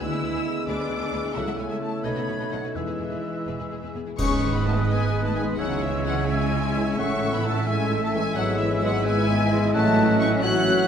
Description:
classical, dramatic, fast romantic movement for symphony orchestra; 87 BPM (dotted quarters); 6/8; straight; E major; A4 = 441 Hz
warm symphonic violin section; melody; 0.0-10.9 s; E5 to F#6; -31 LUFS; left 4 dB
clear symphonic violin section; second line; 0.0-10.9 s; E4 to F#5; -38 LUFS; equal
hollow concert flute; second line; 0.0-10.9 s; D#6 to G#6; -34 LUFS; left 1 dB
mellow clarinet; second line; 0.0-10.9 s; B4 to F#5; -34 LUFS; left 1 dB
mellow bassoon; accompaniment; 0.0-10.9 s; F#3 to A3; -34 LUFS; right 2 dB
rich symphonic viola section; accompaniment; 0.0-10.9 s; E3 to G#4; -33 LUFS; right 3 dB
warm French horn section; sustained chords; 0.0-10.9 s; E3 to G#4; -28 LUFS; left 2 dB
concert harp; arpeggios; 0.0-10.9 s; G#2 to B4; -31 LUFS; left 8 dB
rich symphonic cello section; bass; 0.0-10.9 s; C#2 to C#3; -30 LUFS; right 4 dB
warm symphonic double bass section; bass; 0.0-10.9 s; E1 to D2; -31 LUFS; right 4 dB
clear oboe; second line; 4.2-10.9 s; B4 to E5; -33 LUFS; right 2 dB
clash cymbals and concert bass drum; percussion; 4.2-5.1 s; -32 LUFS; equal
warm trombone section; sustained chords; 4.7-10.9 s; D#3 to B3; -32 LUFS; right 5 dB
wet concert hall reverb, RT60 2.0 s; -21 LUFS; side -8 dB against mid
0.0-4.2 A section; 4.2-10.9 B section
band accent 4.2-4.7
0.0 E7/D; 1.4 A/C#; 2.1 B13; 2.8 E; 4.2 G#m; 5.6 C#m; 7.0 A; 8.4 E/G#; 9.7 F#m7/A

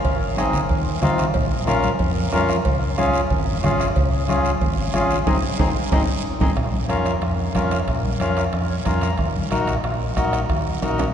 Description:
latin, cumbia; 184 BPM; 4/4; straight; Bb minor; A4 = 441 Hz
fingered electric bass; bass; 0.0-11.1 s; Ab1 to F2; -24 LUFS; equal
bombo; percussion; 0.0-11.1 s; -24 LUFS; right 1 dB
cowbell and timbales; percussion; 0.0-11.1 s; -33 LUFS; right 4 dB
guiro; percussion; 0.1-11.1 s; -36 LUFS; right 6 dB
accordion; accompaniment; 0.4-11.1 s; C4 to Bb5; -22 LUFS; left 1 dB
congas; percussion; 0.4-11.1 s; -29 LUFS; left 1 dB
wet cathedral reverb, RT60 7.1 s; recorded in a church or concert hall, nothing above 11.0 kHz; -18 LUFS; side -8 dB against mid
0.0-6.6 A section; 6.6-11.1 B section
drum fill 5.3-6.6, 10.8-11.1; band accent 5.3-6.6; accordion fill 8.5-9.2
0.0 Ab; 1.4 Bbm; 2.7 Db; 5.3 Ab; 6.6 Bbm; 9.2 Ebm

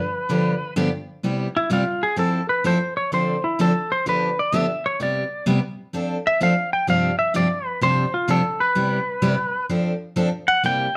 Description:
country; 128 BPM; 4/4; swing 68% on 8ths; C major; A4 = 441 Hz
clean lap steel guitar; melody; 0.0-11.0 s; E4 to G5; -24 LUFS; equal
picked steel-string acoustic guitar; accompaniment; 0.3-10.9 s; G2 to A4; -24 LUFS; equal
moderate studio reverb, RT60 0.7 s; band playing live in one room; -22 LUFS; mono
0.0-1.2 A section; 1.2-11.0 B section
electric slide guitar solo 1.2-11.0
0.0 G7; 1.2 Cmaj7; 2.2 Fmaj7; 3.1 Dm7; 4.1 G7/D; 5.0 Cmaj7; 5.9 F6; 6.9 G7sus4; 8.8 Cmaj7; 9.7 F6

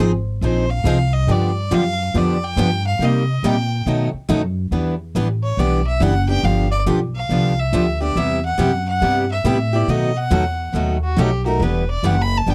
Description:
acoustic string swing (jazz manouche); 140 BPM; 4/4; swing 64% on 8ths; E minor from 4.7 s; A4 = 440 Hz
picked steel-string acoustic guitar; accompaniment; 0.0-12.5 s; B2 to Ab4; -24 LUFS; equal
picked steel-string acoustic guitar; accompaniment; 0.0-12.5 s; B2 to B4; -25 LUFS; equal
upright bass; bass; 0.0-12.5 s; E1 to C3; -22 LUFS; equal
bright fiddle; melody; 0.4-12.5 s; F#4 to B5; -26 LUFS; equal
little or no reverb; dry, close 1970s-style studio recording; -19 LUFS; mono
0.0-4.7 A section; 4.7-12.5 A section
fiddle solo 0.0-12.5
0.0 Fm7; 1.3 G7; 3.0 Cm7; 3.9 B7; 4.7 Em7; 6.4 G7; 8.2 Cmaj7; 9.9 B7; 11.6 Em9

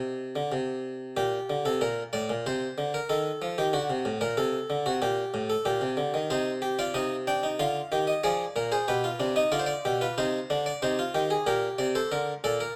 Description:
classical, baroque-style 3-part fugue for harpsichord; 93 BPM; 4/4; straight; A4 = 438 Hz
harpsichord; solo; 0.0-12.8 s; A2 to G5; -28 LUFS; equal
moderate stone room reverb, RT60 1.1 s; -28 LUFS; mono
0.0-12.8 A section
0.0 N.C.; 1.2 Gm/Bb; 2.5 Adim/C; 3.7 D; 5.0 Gm; 6.3 Cm; 7.6 Ddim; 8.9 G/B; 10.2 Cm; 11.5 Gm/Bb

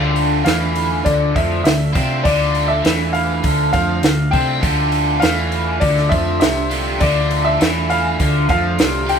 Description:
indie rock; 101 BPM; 4/4; straight; D minor; A4 = 440 Hz
clear upright piano; melody; 0.0-9.2 s; D5 to G5; -21 LUFS; left 2 dB
overdriven electric guitar; riff; 0.0-9.2 s; D3 to F4; -23 LUFS; right 8 dB
raw garage guitar; riff; 0.0-9.2 s; C3 to C4; -21 LUFS; left 2 dB; overdrive, phaser
hollow-body short-scale picked electric bass; bass; 0.0-9.2 s; C2 to C3; -20 LUFS; left 1 dB
compact cocktail drum kit; drums; 0.2-9.2 s; hi-hat, kick drum, snare drum; -19 LUFS; right 1 dB
moderate studio reverb, RT60 0.6 s; band playing live in one room; -14 LUFS; side -7 dB against mid
0.0-9.2 A section
0.0 Dm

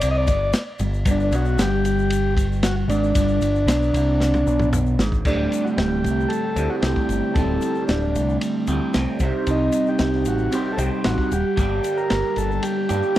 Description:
psychedelic rock; 114 BPM; 4/4; straight; A4 = 440 Hz
combo organ; melody; 0.0-13.2 s; D4 to Eb5; -24 LUFS; equal; spring reverb, slapback echo
electric guitar through a small old amp; riff; 0.0-13.2 s; D2 to C5; -24 LUFS; right 2 dB; phaser
growling picked electric bass; bass; 0.0-13.0 s; D1 to G2; -23 LUFS; equal; overdrive
crunchy breakbeat drum kit; drums; 0.0-13.2 s; crash cymbal, kick drum, ride cymbal, snare drum, toms; -25 LUFS; equal
egg shaker; percussion; 0.0-13.2 s; -41 LUFS; left 13 dB
little or no reverb; dry, close 1970s-style studio recording; -18 LUFS; side -14 dB against mid
0.0-5.3 A section; 5.3-13.2 B section
drum fill 4.2-5.3
0.0 G5; 5.3 D7sus4; 9.2 Cm; 11.6 Gm

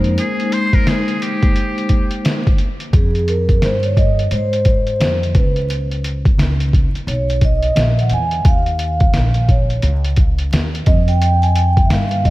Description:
hip hop, jazz-hop; 87 BPM; 4/4; swing 63% on 16ths; F minor; A4 = 440 Hz
vibraphone with soft mallets; accompaniment; 0.0-12.3 s; Ab3 to Ab5; -20 LUFS; equal
upright bass; bass; 0.0-12.3 s; Bb1 to Ab2; -17 LUFS; equal
lo-fi sampler-style drum kit; drums; 0.0-12.3 s; hi-hat, kick drum, snare drum; -16 LUFS; equal
trumpet with metal mute; melody; 0.2-2.3 s; G4 to C5; -24 LUFS; equal; diffuse ambient delay
light reverb, studio ambience; vinyl crackle; -13 LUFS; side -18 dB against mid
0.0-2.9 A section; 2.9-12.3 B section
vibraphone solo 2.9-12.3
0.0 Fm9 (rootless); 2.9 Fmadd9; 5.3 Dbm7; 8.5 Ebsus2; 10.9 Fsus2

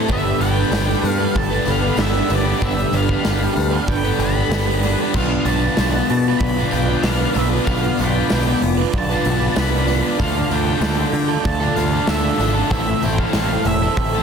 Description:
rock, shoegaze and dream pop; 95 BPM; 4/4; straight; A4 = 440 Hz
dark analog pad; sustained chords; 0.0-14.2 s; F4 to D6; -29 LUFS; right 1 dB; chorus
picked twelve-string acoustic guitar; arpeggios; 0.0-14.2 s; E3 to A4; -30 LUFS; right 10 dB
crunchy overdriven guitar; riff; 0.0-14.2 s; A2 to B4; -23 LUFS; left 14 dB; lush chorus
overdriven electric guitar; riff; 0.0-14.2 s; A2 to B4; -23 LUFS; right 14 dB; reverse reverb
octave-fuzz lead guitar; melody; 0.1-14.2 s; D5 to B5; -26 LUFS; equal; distortion, slapback echo
growling picked electric bass; bass; 0.1-14.2 s; E1 to D3; -21 LUFS; equal; overdrive
huge arena drum kit; drums; 0.1-14.1 s; crash cymbal, hi-hat, kick drum, snare drum; -23 LUFS; equal
tambourine; percussion; 0.1-14.1 s; -40 LUFS; left 17 dB
small room reverb; dense, heavily limited modern master; -16 LUFS; side -6 dB against mid
0.0-14.2 A section
0.1 Gadd9; 5.1 Bdim; 10.2 Dm; 12.7 Am

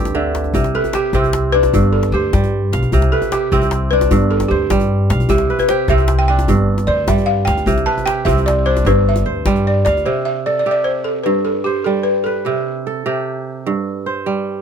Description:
west african traditional, West African string and xylophone music; 101 BPM (dotted quarters); 12/8; straight; C major; A4 = 441 Hz
kora; arpeggios; 0.0-14.6 s; G2 to F5; -19 LUFS; right 4 dB
upright bass; bass; 0.0-10.0 s; G1 to G2; -17 LUFS; left 1 dB
djembe; percussion; 0.1-10.1 s; -22 LUFS; left 3 dB
balafon; melody; 0.8-14.0 s; G4 to A5; -18 LUFS; equal
little or no reverb; close, detailed microphones; -14 LUFS; side -7 dB against mid
0.5-10.1 A section; 10.1-14.6 B section
balafon solo 0.5-10.1
0.0 G5; 0.5 C; 1.7 G; 2.9 C5; 4.1 G; 5.3 C5; 6.5 G5; 7.7 C5; 8.9 G5; 10.1 C5; 11.3 G; 12.5 C5; 13.7 N.C.

